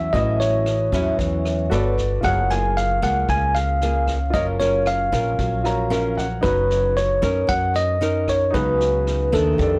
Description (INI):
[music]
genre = bossa nova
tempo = 114 BPM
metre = 4/4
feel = straight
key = F# major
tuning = A4 = 439 Hz
[part]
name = bell-like tine electric piano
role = melody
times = 0.0-9.8 s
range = A4 to G#5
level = -24 LUFS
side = equal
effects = none
[part]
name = nylon-string guitar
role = accompaniment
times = 0.0-9.8 s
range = F2 to A#4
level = -28 LUFS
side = equal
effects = none
[part]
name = warm concert grand piano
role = accompaniment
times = 0.0-9.8 s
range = D#4 to A#5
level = -33 LUFS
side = equal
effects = none
[part]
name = upright bass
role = bass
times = 0.0-9.8 s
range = F#1 to F#2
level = -26 LUFS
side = equal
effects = transformer saturation
[part]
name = vintage brush drum kit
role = drums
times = 0.1-9.7 s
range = kick drum, rim click, snare drum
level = -32 LUFS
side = equal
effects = vintage 12-bit sampler grit
[sound]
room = light reverb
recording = dry, gritty hardware recording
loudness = -20 LUFS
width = mono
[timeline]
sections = 0.0-9.8 A section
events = grand piano fill 5.4-6.4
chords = 0.0 A6; 1.7 Gmaj9; 2.2 F#maj9; 4.3 F#maj7; 6.4 Bmaj9/F#; 8.5 C#9sus4